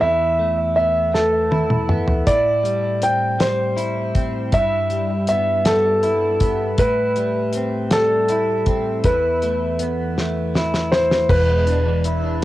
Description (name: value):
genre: six-eight pop ballad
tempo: 53 BPM (dotted quarters)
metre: 6/8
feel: straight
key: unclear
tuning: A4 = 439 Hz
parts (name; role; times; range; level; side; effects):
- warm concert grand piano; melody; 0.0-12.0 s; A4 to G5; -19 LUFS; equal; cassette tape, analog delay
- direct-recorded clean electric guitar; accompaniment; 0.0-12.4 s; E2 to E4; -22 LUFS; equal; double-tracked left and right, cassette tape
- damped 70s drum kit; drums; 1.1-12.2 s; crash cymbal, hi-hat, kick drum, snare drum, toms; -21 LUFS; equal; cassette tape
- vintage muted fingered electric bass; bass; 11.3-12.4 s; E1; -20 LUFS; equal; none
room: moderate studio reverb, RT60 0.7 s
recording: home recording on cassette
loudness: -16 LUFS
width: side -15 dB against mid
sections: 0.0-11.3 A section; 11.3-12.4 B section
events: drum fill 1.1-2.3, 10.2-11.3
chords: 0.0 Esus4; 2.3 Am7; 4.5 Em/G; 6.8 Am7; 9.0 Esus4; 11.3 E7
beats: | 0.01 1.14 | 2.27 3.40 | 4.53 5.66 | 6.78 7.91 | 9.04 10.16 | 11.29 12.42